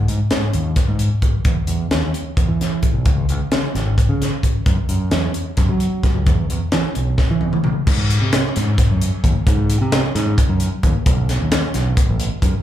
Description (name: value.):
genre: math rock and midwest emo.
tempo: 263 BPM (eighths).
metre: 7/8.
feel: straight.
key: unclear.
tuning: A4 = 444 Hz.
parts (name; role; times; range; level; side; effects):
growling fingered electric bass; bass; 0.0-12.5 s; G#1 to F#3; -19 LUFS; equal; overdrive.
crisp fusion drum kit; drums; 0.1-12.5 s; crash cymbal, hi-hat, kick drum, snare drum, toms; -18 LUFS; equal; none.
room: little or no reverb.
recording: live gig heard through the venue's PA, club reverb.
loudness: -16 LUFS.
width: side -12 dB against mid.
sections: 0.0-7.9 A section; 7.9-12.6 B section.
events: drum fill 7.2-7.9.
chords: none.